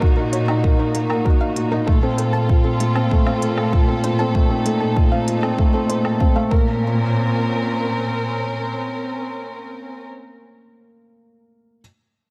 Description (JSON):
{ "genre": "piano and strings electronica", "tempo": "97 BPM", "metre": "4/4", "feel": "straight", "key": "unclear", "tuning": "A4 = 436 Hz", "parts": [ { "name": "dark studio string section", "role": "sustained chords", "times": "0.0-10.1 s", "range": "Bb3 to Bb4", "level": "-29 LUFS", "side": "equal", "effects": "sidechain pumping" }, { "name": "soft round pluck", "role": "arpeggios", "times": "0.0-7.1 s", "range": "A3 to Bb5", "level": "-31 LUFS", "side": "equal", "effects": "chorus, sidechain pumping, digital delay" }, { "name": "felt-muted upright piano", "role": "riff", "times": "0.0-11.8 s", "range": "A3 to A5", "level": "-26 LUFS", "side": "equal", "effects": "digital delay" }, { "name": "dark studio cello section", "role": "bass", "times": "0.0-8.6 s", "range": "Bb2", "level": "-25 LUFS", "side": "equal", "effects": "sidechain pumping" }, { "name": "electronic kick drum", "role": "drums", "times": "0.0-6.6 s", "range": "none", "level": "-19 LUFS", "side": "equal", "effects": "none" }, { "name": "electronic hi-hat and woodblock", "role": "drums", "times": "0.3-6.2 s", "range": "none", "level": "-33 LUFS", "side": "equal", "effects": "none" } ], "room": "light reverb, studio reverb", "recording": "none", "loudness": "-19 LUFS", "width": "mono", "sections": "0.0-6.8 A section; 6.8-9.3 B section", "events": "drop 0.0-6.8", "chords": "0.0 Ebm/Bb; 1.9 F/Bb; 6.5 Bbmadd9" }